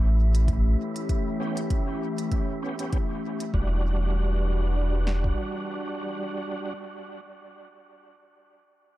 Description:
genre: ambient dub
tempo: 98 BPM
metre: 4/4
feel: swing 56% on 16ths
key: E dorian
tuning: A4 = 440 Hz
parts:
  - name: warbly tape-like pad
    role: sustained chords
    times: 0.0-6.7 s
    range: E3 to B4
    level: -32 LUFS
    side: left 1 dB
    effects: chorus, built-in reverb
  - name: warm sub bass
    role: bass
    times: 0.0-5.3 s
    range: E1 to A1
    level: -22 LUFS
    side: equal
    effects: none
  - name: wind-like tuned noise texture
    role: texture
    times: 0.0-3.6 s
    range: E4 to E5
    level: -40 LUFS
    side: right 1 dB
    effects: built-in reverb
  - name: electronic hi-hat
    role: drums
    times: 0.3-3.5 s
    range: none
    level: -43 LUFS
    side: right 3 dB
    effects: dub echo
  - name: deep house drum kit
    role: drums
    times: 0.5-5.4 s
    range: kick drum, snare drum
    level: -27 LUFS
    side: equal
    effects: none
  - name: overdriven tonewheel organ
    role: stabs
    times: 1.4-6.7 s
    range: G3 to G4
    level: -34 LUFS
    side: right 2 dB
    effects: chorus vibrato, fast rotary speaker, low-pass filter, dub echo
room: digital ambience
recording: echo-heavy mix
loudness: -24 LUFS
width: side -16 dB against mid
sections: 0.0-3.5 A section; 3.5-6.0 B section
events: none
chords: 0.0 A9; 3.5 Em9

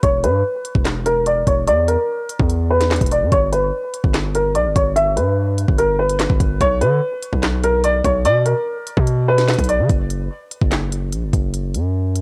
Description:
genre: hip hop, drill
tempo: 146 BPM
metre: 4/4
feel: half-time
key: unclear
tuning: A4 = 444 Hz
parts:
  - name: warm upright piano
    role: melody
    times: 0.0-9.8 s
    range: A#4 to E5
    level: -20 LUFS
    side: equal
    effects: low-pass filter, cassette tape
  - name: distorted 808-style bass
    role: bass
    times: 0.0-12.2 s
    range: E1 to D3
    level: -22 LUFS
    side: equal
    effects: distortion
  - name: drill drum kit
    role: drums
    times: 0.0-12.2 s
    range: handclaps, hi-hat, kick drum, snare drum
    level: -22 LUFS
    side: equal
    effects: none
room: digital ambience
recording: home recording on cassette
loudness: -18 LUFS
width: mono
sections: 0.0-12.2 A section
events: filter sweep on upright piano 0.0-6.6; break 9.9-12.2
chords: 0.0 E5; 3.3 G; 6.6 N.C.

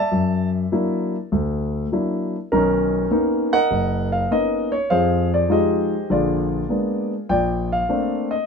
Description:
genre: solo jazz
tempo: 100 BPM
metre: 4/4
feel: swing 69% on 8ths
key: unclear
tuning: A4 = 441 Hz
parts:
  - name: dark concert grand piano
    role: solo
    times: 0.0-8.5 s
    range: F#1 to A5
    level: -18 LUFS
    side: left 1 dB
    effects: none
room: light reverb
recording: minimal, uncompressed stereo recording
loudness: -18 LUFS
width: side -5 dB against mid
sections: 0.0-7.3 A section; 7.3-8.5 B section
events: none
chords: 0.1 Gbaug7; 2.5 Bmaj9; 4.9 Fm9; 6.1 Bb7b9; 7.3 Bbmaj9

